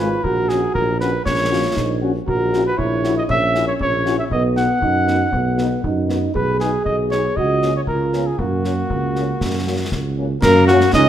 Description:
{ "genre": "military-style march for wind band", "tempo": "118 BPM", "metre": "2/4", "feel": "straight", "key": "F# major", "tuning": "A4 = 440 Hz", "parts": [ { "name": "mellow cornet", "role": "melody", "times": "0.0-11.1 s", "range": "F#4 to F#5", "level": "-20 LUFS", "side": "equal", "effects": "none" }, { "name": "warm euphonium", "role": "second line", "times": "0.0-11.1 s", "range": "F#3 to G#4", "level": "-22 LUFS", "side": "right 2 dB", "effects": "none" }, { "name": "dark French horn section", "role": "accompaniment", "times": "0.0-10.8 s", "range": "A#3 to G#4", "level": "-26 LUFS", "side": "left 5 dB", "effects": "none" }, { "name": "mellow tuba", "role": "bass", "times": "0.0-11.1 s", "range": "G#1 to F#2", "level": "-21 LUFS", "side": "right 1 dB", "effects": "none" }, { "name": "concert bass drum, concert snare drum and clash cymbals", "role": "drums", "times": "0.2-11.1 s", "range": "none", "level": "-26 LUFS", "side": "left 1 dB", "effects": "none" }, { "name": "warm trombone section", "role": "sustained chords", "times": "10.4-11.1 s", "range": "A#3 to C#4", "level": "-24 LUFS", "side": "right 2 dB", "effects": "none" } ], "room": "moderate large studio reverb, RT60 1.3 s", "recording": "none", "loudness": "-16 LUFS", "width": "side -10 dB against mid", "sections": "0.0-10.4 A section", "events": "none", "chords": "0.2 F#/A#; 2.3 F#7/A#; 4.3 B; 6.4 G#m/B; 7.4 F#/C#; 7.9 C#7; 8.4 F#" }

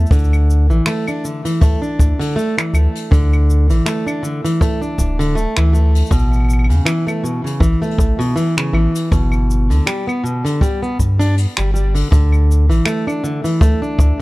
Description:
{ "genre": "folktronica", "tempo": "80 BPM", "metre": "4/4", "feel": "swing 56% on 16ths", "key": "unclear", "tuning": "A4 = 440 Hz", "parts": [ { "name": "fingerpicked plugged-in steel-string acoustic guitar", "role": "arpeggios", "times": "0.0-14.2 s", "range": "B2 to D4", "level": "-18 LUFS", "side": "equal", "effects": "vintage 12-bit sampler grit, tape echo" }, { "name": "warm sub bass", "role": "bass", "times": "0.0-14.1 s", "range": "D1 to G2", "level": "-14 LUFS", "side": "equal", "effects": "none" }, { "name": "jazz brush drum kit", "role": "drums", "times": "0.1-14.2 s", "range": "cabasa, claves, finger snaps, hi-hat", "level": "-25 LUFS", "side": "left 1 dB", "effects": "none" }, { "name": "kick drum", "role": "drums", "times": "0.1-14.2 s", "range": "none", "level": "-16 LUFS", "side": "equal", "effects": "none" } ], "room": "small room ambience", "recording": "dry, close 1970s-style studio recording", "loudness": "-13 LUFS", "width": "side -20 dB against mid", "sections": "0.1-14.2 A section", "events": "none", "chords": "0.1 Dsus2; 6.1 Aadd9; 9.1 G; 12.1 Dsus2" }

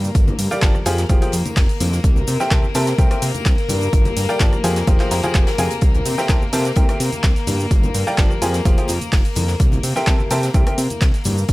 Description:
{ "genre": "piano house", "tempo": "127 BPM", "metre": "4/4", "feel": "straight", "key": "C mixolydian", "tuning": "A4 = 439 Hz", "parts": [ { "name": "rich chamber string section", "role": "sustained chords", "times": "0.0-11.5 s", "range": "Bb3 to Bb4", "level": "-27 LUFS", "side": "left 3 dB", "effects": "sidechain pumping" }, { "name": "fat analog bass", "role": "bass", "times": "0.0-11.5 s", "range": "F1 to C3", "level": "-21 LUFS", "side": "equal", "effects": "sidechain pumping" }, { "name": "punchy analog drum machine", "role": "drums", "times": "0.0-11.5 s", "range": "handclaps, hi-hat, rim click, shaker", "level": "-26 LUFS", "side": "equal", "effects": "overdrive" }, { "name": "tambourine and congas", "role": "percussion", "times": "0.0-11.5 s", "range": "none", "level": "-29 LUFS", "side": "left 2 dB", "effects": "none" }, { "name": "compact cocktail drum kit", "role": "drums", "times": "0.1-11.5 s", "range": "hi-hat, snare drum", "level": "-35 LUFS", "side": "left 2 dB", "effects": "none" }, { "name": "electronic kick drum", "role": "drums", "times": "0.2-11.5 s", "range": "none", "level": "-16 LUFS", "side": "equal", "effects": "overdrive" }, { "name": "clear upright piano", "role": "riff", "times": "0.5-10.8 s", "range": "F3 to Bb5", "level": "-22 LUFS", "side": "equal", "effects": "sidechain pumping, tape echo" } ], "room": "small room ambience", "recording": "none", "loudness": "-15 LUFS", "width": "side -19 dB against mid", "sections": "0.0-11.5 A section", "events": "none", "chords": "0.0 Gm7; 0.9 Fmadd9; 2.0 C7; 3.7 Gm7; 4.6 Fmadd9; 5.8 C7; 7.5 Gm7; 8.4 Fmadd9; 9.6 C7" }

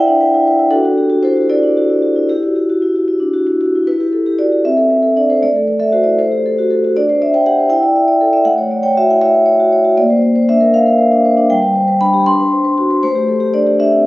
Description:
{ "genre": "classical, contemporary piece for solo vibraphone", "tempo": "78 BPM (dotted quarters)", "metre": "6/8", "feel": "straight", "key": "E minor", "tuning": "A4 = 440 Hz", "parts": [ { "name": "vibraphone with soft mallets", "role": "solo", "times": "0.0-14.1 s", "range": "G3 to C6", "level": "-11 LUFS", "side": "equal", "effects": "none" } ], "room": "moderate recital hall reverb, RT60 1.7 s", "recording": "recorded on a phone in the room, studio ambience, compression, nothing above 7.5 kHz", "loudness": "-11 LUFS", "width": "side -19 dB against mid", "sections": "0.0-3.9 A section; 3.9-14.1 A section", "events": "none", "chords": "0.0 Em7; 0.7 Dadd9; 2.3 Em9; 3.9 Emadd9; 4.6 C69; 5.4 Am6; 7.0 D7sus4; 7.7 Em7; 8.5 A69; 10.0 Bbadd9; 11.5 G; 12.3 D6; 13.0 Am7" }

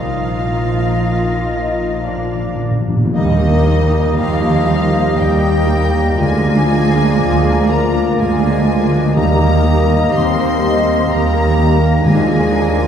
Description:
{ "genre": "classical, slow romantic movement for symphony orchestra", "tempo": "61 BPM", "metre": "3/4", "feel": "uneven beats, rubato", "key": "Eb major", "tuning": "A4 = 440 Hz", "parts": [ { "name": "warm symphonic violin section", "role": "melody", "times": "0.0-12.9 s", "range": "Eb5 to C6", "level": "-25 LUFS", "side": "left 3 dB", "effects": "none" }, { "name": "mellow oboe", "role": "second line", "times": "0.0-12.9 s", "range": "D5 to Eb5", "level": "-27 LUFS", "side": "right 1 dB", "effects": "none" }, { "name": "mellow silver concert flute", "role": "second line", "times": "0.0-12.9 s", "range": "Bb6", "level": "-28 LUFS", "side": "left 2 dB", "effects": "none" }, { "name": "warm clarinet", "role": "second line", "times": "0.0-12.9 s", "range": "F4 to G4", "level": "-25 LUFS", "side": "right 1 dB", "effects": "none" }, { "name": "warm symphonic violin section", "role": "second line", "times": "0.0-12.9 s", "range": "Eb4 to F5", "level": "-27 LUFS", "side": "left 3 dB", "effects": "none" }, { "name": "warm bassoon", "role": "accompaniment", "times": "0.0-12.9 s", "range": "Bb3", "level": "-25 LUFS", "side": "equal", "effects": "none" }, { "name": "warm symphonic viola section", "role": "accompaniment", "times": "0.0-12.9 s", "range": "G3 to Bb4", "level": "-23 LUFS", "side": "equal", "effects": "none" }, { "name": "mellow French horn section", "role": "sustained chords", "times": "0.0-12.9 s", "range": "Eb3 to C4", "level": "-21 LUFS", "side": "left 2 dB", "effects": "none" }, { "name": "concert harp", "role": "arpeggios", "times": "0.0-12.9 s", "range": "Bb2 to Bb5", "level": "-23 LUFS", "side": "left 3 dB", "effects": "none" }, { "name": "clear symphonic double bass section", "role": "bass", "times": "0.0-12.9 s", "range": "Bb1 to Eb2", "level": "-19 LUFS", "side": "right 2 dB", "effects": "none" }, { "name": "warm symphonic cello section", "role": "bass", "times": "0.0-12.9 s", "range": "D2 to F4", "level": "-19 LUFS", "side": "right 1 dB", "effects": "none" }, { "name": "timpani", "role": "percussion", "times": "2.1-3.1, 9.2-12.9 s", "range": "Bb2 to Eb3", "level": "-20 LUFS", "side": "equal", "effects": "none" }, { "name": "clear trombone section", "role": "sustained chords", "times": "3.1-12.9 s", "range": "F3 to Bb3", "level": "-24 LUFS", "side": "right 2 dB", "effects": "none" } ], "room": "wet scoring stage reverb, RT60 1.8 s", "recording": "heard from further back in the room", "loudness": "-12 LUFS", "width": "side -8 dB against mid", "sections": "0.0-3.1 A section; 3.1-12.9 B section", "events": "timpani fill 2.1-3.1", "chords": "0.0 Bbsus4; 2.1 Bb; 3.1 Eb; 6.2 Bb7/D; 9.2 Eb; 12.0 Bb7/Eb" }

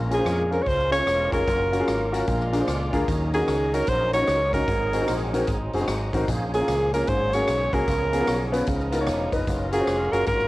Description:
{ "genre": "uptempo gospel", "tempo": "150 BPM", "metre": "4/4", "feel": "swing 63% on 8ths", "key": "unclear", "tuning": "A4 = 440 Hz", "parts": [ { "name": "clear concert grand piano", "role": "accompaniment", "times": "0.0-10.2 s", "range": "Ab2 to Db5", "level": "-26 LUFS", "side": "left 1 dB", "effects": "cassette tape" }, { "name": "muted French horn section", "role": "sustained chords", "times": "0.0-10.5 s", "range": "F3 to F4", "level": "-36 LUFS", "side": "equal", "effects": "none" }, { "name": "overdriven tonewheel organ", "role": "sustained chords", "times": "0.0-10.5 s", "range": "F3 to Ab5", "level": "-34 LUFS", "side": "right 1 dB", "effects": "fast rotary speaker, chorus vibrato, cassette tape" }, { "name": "fingered electric bass", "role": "bass", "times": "0.0-10.5 s", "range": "Fb1 to F2", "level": "-28 LUFS", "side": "equal", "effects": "transformer saturation" }, { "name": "breathy alto saxophone", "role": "melody", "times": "0.1-10.5 s", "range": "Ab4 to Db5", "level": "-24 LUFS", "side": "equal", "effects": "cassette tape, analog delay" }, { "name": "swinging big-band drum kit", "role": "drums", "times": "0.1-10.5 s", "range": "hi-hat, kick drum, rim click", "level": "-31 LUFS", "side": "equal", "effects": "none" } ], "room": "light reverb, small room ambience", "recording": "home recording on cassette", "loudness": "-21 LUFS", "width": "side -18 dB against mid", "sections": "0.0-10.5 A section", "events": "tonewheel organ fill 2.5-3.1, 8.9-9.5", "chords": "0.0 Bbm7; 1.5 Gbmaj7; 2.3 Bb7; 3.1 Ebm7; 4.7 Ab7; 6.3 Bbm7; 7.1 Ab9sus4; 7.9 Db7; 8.7 Db13; 9.5 Gbmaj7" }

